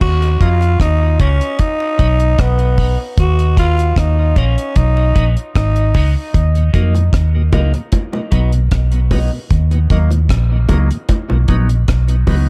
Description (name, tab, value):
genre	dub reggae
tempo	76 BPM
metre	4/4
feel	straight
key	Eb minor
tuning	A4 = 440 Hz
part	growling tenor saxophone	melody	0.0-6.1 s	B3 to Gb4	-22 LUFS	equal	dub echo
part	vintage muted fingered electric bass	bass	0.0-12.5 s	Ab1 to F2	-16 LUFS	equal	none
part	deep reggae drum kit	drums	0.0-12.5 s	crash cymbal, hi-hat, kick drum, rim click	-18 LUFS	equal	none
part	tonewheel organ	accompaniment	0.2-12.4 s	Eb2 to Eb4	-32 LUFS	equal	slow rotary speaker, high-pass filter, dub echo
part	clean electric guitar	accompaniment	0.4-12.5 s	Gb3 to Eb4	-29 LUFS	equal	phaser, high-pass filter, dub echo
part	bongos	percussion	0.6-12.5 s	none	-27 LUFS	equal	high-pass filter on perc, dub echo
room	small room ambience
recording	echo-heavy mix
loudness	-14 LUFS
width	mono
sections	0.0-12.5 A section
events	none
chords	0.0 Ebm; 1.6 B; 3.2 Ebm; 4.8 B; 6.3 Ebm; 7.9 B; 9.5 Ebm; 11.1 B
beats	| 0.01 0.81 1.60 2.39 | 3.18 3.97 4.76 5.55 | 6.34 7.13 7.92 8.71 | 9.51 10.30 11.09 11.88